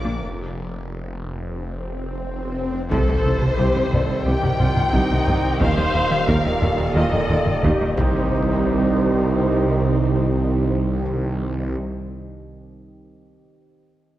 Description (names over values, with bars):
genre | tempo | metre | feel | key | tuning
cinematic, hybrid orchestral and electronic film score | 89 BPM | 4/4 | straight | C minor | A4 = 438 Hz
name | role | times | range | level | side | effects
warm symphonic violin section | melody | 0.0-11.8 s | C5 to D6 | -27 LUFS | left 2 dB | low-pass filter
rich symphonic violin section | second line | 0.0-11.8 s | C4 to G5 | -31 LUFS | left 2 dB | none
clear symphonic viola section | accompaniment | 0.0-11.8 s | D4 to C5 | -28 LUFS | right 1 dB | low-pass filter
mellow French horn section | sustained chords | 0.0-11.8 s | none | barely audible | none | none
metallic inharmonic drone | sustained chords | 0.0-11.8 s | Eb3 to Eb5 | -32 LUFS | right 1 dB | none
warm trombone section | sustained chords | 0.0-11.8 s | Bb2 to Bb3 | -29 LUFS | right 2 dB | low-pass filter
rubbery square bass | riff | 0.0-7.9 s | C2 to Bb3 | -27 LUFS | left 1 dB | low-pass filter
phased detuned saw bass | bass | 0.0-11.8 s | Eb1 to C2 | -29 LUFS | equal | phaser
rich symphonic cello section | bass | 0.0-11.8 s | C2 to Eb3 | -28 LUFS | right 2 dB | none
felt-muted upright piano | texture | 0.0-8.3 s | F4 to F5 | -34 LUFS | left 2 dB | none
swell and impact | sound effects | 1.4-12.4 s | none | -30 LUFS | equal | none
dark tuba | bass | 2.9-11.8 s | C2 to Eb2 | -25 LUFS | right 2 dB | none
rich symphonic double bass section | bass | 2.9-11.8 s | C2 to Eb2 | -26 LUFS | right 2 dB | none
solo taiko drums | drums | 2.9-9.3 s | none | -26 LUFS | equal | none
room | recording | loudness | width
wet scoring stage reverb, RT60 1.8 s | worn, warbling old tape, cassette tape, warbly pitch drift | -18 LUFS | side -14 dB against mid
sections
0.0-2.9 A section; 2.9-8.3 B section; 8.3-11.0 C section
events
break 0.2-2.9; swell 1.4-2.9; drum fill 2.2-2.9; impact 2.9-5.6, 8.3-11.0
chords
0.2 N.C.; 2.9 Cm; 5.6 Eb; 8.0 Cm